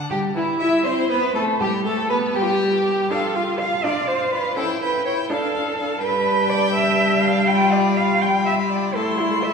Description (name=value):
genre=quick classical-period movement for string quartet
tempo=82 BPM (dotted quarters)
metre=6/8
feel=rubato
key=C major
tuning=A4 = 440 Hz
part: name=clear violin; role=melody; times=0.0-9.5 s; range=E4 to C6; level=-27 LUFS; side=left 5 dB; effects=none
part: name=warm violin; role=second line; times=0.0-9.5 s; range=D4 to F#5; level=-27 LUFS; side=left 2 dB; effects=none
part: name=rich viola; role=accompaniment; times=0.1-9.5 s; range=E3 to E4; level=-23 LUFS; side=left 2 dB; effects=none
part: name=warm cello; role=bass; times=0.1-9.5 s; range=E4 to G5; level=-21 LUFS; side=right 3 dB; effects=none
room=wet church reverb, RT60 3.0 s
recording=recorded in a church or concert hall, small room ambience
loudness=-18 LUFS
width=side -5 dB against mid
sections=0.1-9.5 A section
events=none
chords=0.1 C; 1.6 G; 2.4 N.C.; 3.1 Dm; 4.6 A7/C# (rootless); 5.3 Dm; 6.0 G7; 8.9 Am